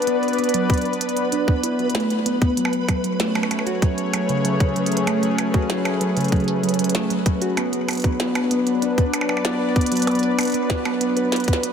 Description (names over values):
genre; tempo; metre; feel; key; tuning
IDM; 96 BPM; 4/4; straight; unclear; A4 = 440 Hz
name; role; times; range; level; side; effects
warm analog pad; sustained chords; 0.0-11.7 s; F#3 to D5; -24 LUFS; left 2 dB; chorus, vintage 12-bit sampler grit, shimmer reverb
glitchy drum kit; drums; 0.0-11.7 s; hi-hat, percussion blips, snare drum; -27 LUFS; right 2 dB; overdrive, ping-pong delay
flickering grainy texture; texture; 0.0-11.7 s; B4; -30 LUFS; right 1 dB; built-in reverb, shimmer reverb
harp-like synth pluck; arpeggios; 0.1-11.7 s; C#3 to B4; -22 LUFS; right 1 dB; chorus, ping-pong delay, shimmer reverb
electronic kick drum; drums; 0.7-11.6 s; none; -20 LUFS; equal; overdrive
room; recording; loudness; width
moderate lush hall reverb, RT60 2.6 s; none; -18 LUFS; side -7 dB against mid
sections
0.0-11.7 A section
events
drum fill 11.3-11.7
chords
0.0 Bm; 2.6 F#madd9; 7.6 Bm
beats
| 0.07 0.70 1.32 1.95 | 2.57 3.20 3.82 4.45 | 5.07 5.70 6.32 6.95 | 7.57 8.20 8.82 9.45 | 10.07 10.70 11.32